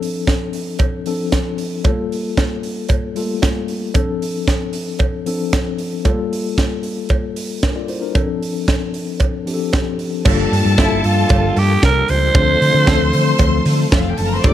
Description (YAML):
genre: disco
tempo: 114 BPM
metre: 4/4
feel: straight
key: G minor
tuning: A4 = 440 Hz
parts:
  - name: mellow tine electric piano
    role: accompaniment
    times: 0.0-14.5 s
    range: E3 to D5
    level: -21 LUFS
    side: left 4 dB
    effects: medium stereo tremolo
  - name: tight funk drum kit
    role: drums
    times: 0.0-14.5 s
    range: crash cymbal, hi-hat, kick drum, snare drum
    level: -19 LUFS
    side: right 1 dB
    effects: none
  - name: cowbell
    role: percussion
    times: 0.3-14.5 s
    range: none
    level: -29 LUFS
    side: right 8 dB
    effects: none
  - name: clear studio string section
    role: second line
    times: 10.2-14.5 s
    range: E4 to D6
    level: -22 LUFS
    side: left 1 dB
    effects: none
  - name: tonewheel organ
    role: sustained chords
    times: 10.3-14.5 s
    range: D3 to A4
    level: -28 LUFS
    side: right 1 dB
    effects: overdrive, chorus vibrato, slow rotary speaker
  - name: hollow-body short-scale fingered electric bass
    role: bass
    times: 10.3-14.5 s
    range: F1 to D3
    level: -17 LUFS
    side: equal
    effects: none
  - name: breathy alto saxophone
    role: melody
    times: 10.8-13.7 s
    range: E4 to C5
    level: -18 LUFS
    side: right 3 dB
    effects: none
room: light reverb, small room reverb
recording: none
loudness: -15 LUFS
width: side -11 dB against mid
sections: 0.0-10.3 A section; 10.3-14.5 B section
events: none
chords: 0.0 Dm7; 1.9 Gm9; 4.0 Dm7; 6.1 Gm9; 8.2 Dm7; 10.3 Gm9; 12.3 Dm7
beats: 0.28 0.80 1.33 | 1.85 2.38 2.90 3.43 | 3.96 4.48 5.00 5.53 | 6.06 6.58 7.11 7.63 | 8.16 8.68 9.21 9.73 | 10.26 10.78 11.30 11.83 | 12.35 12.87 13.39 13.92 | 14.44